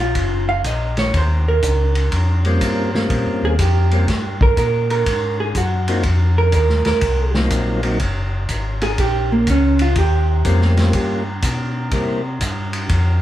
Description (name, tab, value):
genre	soul jazz organ trio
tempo	122 BPM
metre	4/4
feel	swing 67% on 8ths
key	Eb mixolydian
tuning	A4 = 440 Hz
part	vintage hollow-body jazz guitar	accompaniment	0.0-11.4 s	Bb3 to F5	-20 LUFS	right 3 dB	none
part	mellow tonewheel organ	bass	0.0-13.2 s	Gb1 to C3	-18 LUFS	equal	chorus vibrato, slow rotary speaker
part	vintage drum kit	drums	0.1-13.0 s	hi-hat, kick drum, ride cymbal, snare drum	-22 LUFS	equal	none
part	percussive tonewheel organ	melody	2.5-12.2 s	Gb3 to Bb4	-21 LUFS	left 1 dB	slow rotary speaker, chorus vibrato
room	wet studio reverb, RT60 0.5 s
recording	band playing live in one room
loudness	-15 LUFS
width	side -13 dB against mid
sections	0.0-13.2 A section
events	hollow-body jazz guitar solo 0.0-13.2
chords	0.0 Ab7sus2 (rootless); 1.1 Eb13; 5.1 Ab13; 9.0 Eb13; 10.9 Gm7b5; 11.9 C7